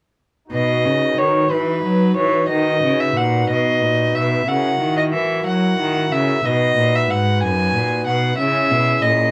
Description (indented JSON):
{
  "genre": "classical, baroque-style sonata movement with continuo",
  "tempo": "61 BPM (dotted quarters)",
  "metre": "12/8",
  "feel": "rubato",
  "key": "B major",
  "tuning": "A4 = 440 Hz",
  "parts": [
    { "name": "dark violin", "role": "melody", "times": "0.5-9.3 s", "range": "B4 to G#5", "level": "-21 LUFS", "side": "equal", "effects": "none" },
    { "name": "pipe organ, foundations", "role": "accompaniment", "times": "0.5-9.3 s", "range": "F#2 to B4", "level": "-24 LUFS", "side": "equal", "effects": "none" },
    { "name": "rich cello", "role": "bass", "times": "0.5-9.3 s", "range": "F#2 to F#3", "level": "-23 LUFS", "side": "equal", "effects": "none" }
  ],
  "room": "moderate small room reverb, RT60 0.6 s",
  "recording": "none",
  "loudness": "-18 LUFS",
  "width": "mono",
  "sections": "0.5-9.3 A section",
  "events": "none",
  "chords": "0.5 B; 4.5 F#7/C#; 6.5 B; 8.4 C#m"
}